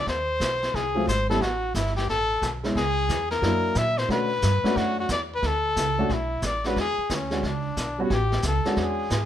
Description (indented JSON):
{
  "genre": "jazz, small-group swing and bop",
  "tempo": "179 BPM",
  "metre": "4/4",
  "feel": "swing 64% on 8ths",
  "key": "unclear",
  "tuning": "A4 = 438 Hz",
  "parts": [
    { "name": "warm trumpet", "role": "melody", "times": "0.0-9.3 s", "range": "C#4 to E5", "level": "-26 LUFS", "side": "left 2 dB", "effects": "none" },
    { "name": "upright bass", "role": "bass", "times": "0.0-9.3 s", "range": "G1 to B2", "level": "-28 LUFS", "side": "right 1 dB", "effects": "none" },
    { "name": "vintage brush drum kit", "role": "drums", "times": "0.1-9.3 s", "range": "brushed snare drum, hi-hat, kick drum, snare drum", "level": "-31 LUFS", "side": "equal", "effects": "none" },
    { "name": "warm baby grand piano", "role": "accompaniment", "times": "0.9-9.1 s", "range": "F#3 to F#4", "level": "-27 LUFS", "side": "equal", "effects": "none" }
  ],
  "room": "light reverb",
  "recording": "minimal, uncompressed stereo recording",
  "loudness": "-22 LUFS",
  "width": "side -10 dB against mid",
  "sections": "0.0-9.3 A section",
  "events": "none",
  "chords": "0.1 D#5; 1.4 A7sus2; 2.8 C#m; 3.4 F#aug7; 4.1 Bm7; 6.8 E13; 8.1 A6"
}